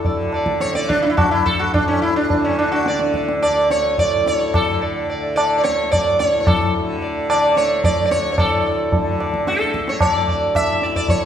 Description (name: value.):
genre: indian classical, Hindustani.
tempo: 109 BPM.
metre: 4/4.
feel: straight.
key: unclear.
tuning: A4 = 440 Hz.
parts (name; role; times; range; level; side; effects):
sitar; melody; 0.0-11.3 s; C#4 to E5; -18 LUFS; right 2 dB; none.
tanpura; drone; 0.0-11.3 s; D2 to D3; -25 LUFS; left 2 dB; none.
tabla; percussion; 0.0-11.3 s; none; -20 LUFS; left 1 dB; none.
room: wet recital hall reverb, RT60 1.5 s.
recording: recorded in a church or concert hall.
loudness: -16 LUFS.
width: side -9 dB against mid.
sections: 0.0-8.4 A section; 8.4-11.3 B section.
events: speeding up 0.0-11.3.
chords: none.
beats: 0.05 0.62 1.18 | 1.75 2.31 2.87 3.42 | 3.98 4.54 5.09 5.64 | 6.20 6.75 7.29 7.84 | 8.38 8.93 9.47 10.01 | 10.55 11.09.